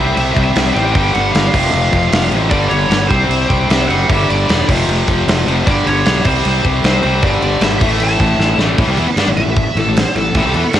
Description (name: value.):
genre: hard rock.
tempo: 153 BPM.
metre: 4/4.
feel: straight.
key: unclear.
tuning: A4 = 439 Hz.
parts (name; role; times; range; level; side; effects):
high-gain lead guitar; melody; 0.0-10.8 s; A4 to A5; -19 LUFS; right 1 dB; distortion, cassette tape, tape echo.
distorted electric guitar; riff; 0.0-10.8 s; F2 to D4; -18 LUFS; left 7 dB; overdrive.
high-gain distorted guitar; riff; 0.0-10.8 s; F2 to D4; -20 LUFS; right 8 dB; distortion.
fuzz fingered electric bass; bass; 0.0-10.8 s; E1 to G2; -18 LUFS; equal; overdrive.
big rock drum kit; drums; 0.2-10.8 s; crash cymbal, kick drum, snare drum; -17 LUFS; equal; cassette tape.
room: light reverb.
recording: home recording on cassette.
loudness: -11 LUFS.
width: side -11 dB against mid.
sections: 0.0-8.8 A section; 8.8-10.8 B section.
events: drum fill 8.4-8.8; lead electric guitar solo 8.8-10.8.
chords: 0.0 C5; 1.0 G5; 1.5 F; 2.5 G5; 3.1 C5; 4.1 G5; 4.7 F5; 5.7 G; 6.2 C5; 7.2 G5; 7.8 A5.